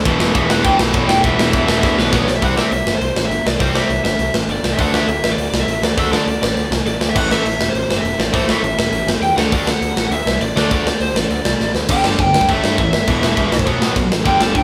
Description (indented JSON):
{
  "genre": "punk rock",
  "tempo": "203 BPM",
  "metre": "4/4",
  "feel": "straight",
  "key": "unclear",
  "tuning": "A4 = 438 Hz",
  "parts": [
    { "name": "distorted electric guitar", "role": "riff", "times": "0.1-2.1 s", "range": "E2 to E3", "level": "-26 LUFS", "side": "equal", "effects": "none" },
    { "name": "tight distorted guitar", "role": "riff", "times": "0.1-14.6 s", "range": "E2 to D4", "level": "-26 LUFS", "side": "equal", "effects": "distortion" },
    { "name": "tight distorted guitar", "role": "riff", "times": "0.1-14.6 s", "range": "E2 to D4", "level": "-24 LUFS", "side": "equal", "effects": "distortion" },
    { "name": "fuzz picked electric bass", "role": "bass", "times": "0.1-14.6 s", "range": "E1 to A2", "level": "-24 LUFS", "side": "equal", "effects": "overdrive" },
    { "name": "tight metal drum kit", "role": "drums", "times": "0.1-14.6 s", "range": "crash cymbal, hi-hat, kick drum, ride cymbal, snare drum", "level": "-20 LUFS", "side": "equal", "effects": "none" },
    { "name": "lead guitar through a small cranked amp", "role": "melody", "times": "0.4-14.6 s", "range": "B4 to A5", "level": "-22 LUFS", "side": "equal", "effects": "overdrive" }
  ],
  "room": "light reverb",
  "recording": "band playing live in one room",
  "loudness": "-16 LUFS",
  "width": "mono",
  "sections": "0.0-2.4 A section; 2.4-11.9 B section; 11.9-14.6 C section",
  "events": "drum fill 1.8-2.4, 11.6; lead electric guitar solo 11.9-14.6",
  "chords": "0.1 E5; 2.1 B5; 2.3 Bsus4; 2.4 C; 4.8 D5; 7.2 Am; 9.4 D; 11.9 G5; 12.5 A5; 13.1 E5; 13.5 B5",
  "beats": "| 0.06 0.35 0.65 0.94 | 1.24 1.53 1.83 2.12 | 2.42 2.72 3.01 3.31 | 3.60 3.90 4.20 4.49 | 4.79 5.08 5.38 5.68 | 5.97 6.27 6.57 6.86 | 7.16 7.46 7.75 8.05 | 8.34 8.64 8.94 9.23 | 9.53 9.82 10.12 10.42 | 10.71 11.01 11.30 11.60 | 11.89 12.19 12.49 12.78 | 13.08 13.37 13.67 13.96 | 14.26 14.55"
}